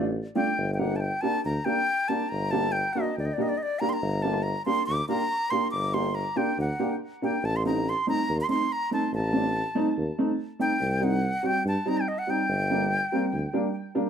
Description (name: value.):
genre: klezmer.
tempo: 142 BPM.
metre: 4/4.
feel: straight.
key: G harmonic minor.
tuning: A4 = 440 Hz.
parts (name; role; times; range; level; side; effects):
breathy bright concert flute; melody; 0.0-13.8 s; D5 to D6; -28 LUFS; left 1 dB; tape echo.
dark upright piano; accompaniment; 0.0-14.1 s; G3 to G4; -28 LUFS; right 1 dB; none.
clear tuba; bass; 0.0-13.5 s; G1 to G2; -29 LUFS; equal; none.
room: moderate small room reverb, RT60 0.6 s.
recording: dark, warm production.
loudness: -24 LUFS.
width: side -8 dB against mid.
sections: 0.6-14.1 A section.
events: speeding up 0.0-14.1.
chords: 0.0 Dm; 0.6 Gm; 7.4 Adim; 10.8 Cm; 12.5 Gm.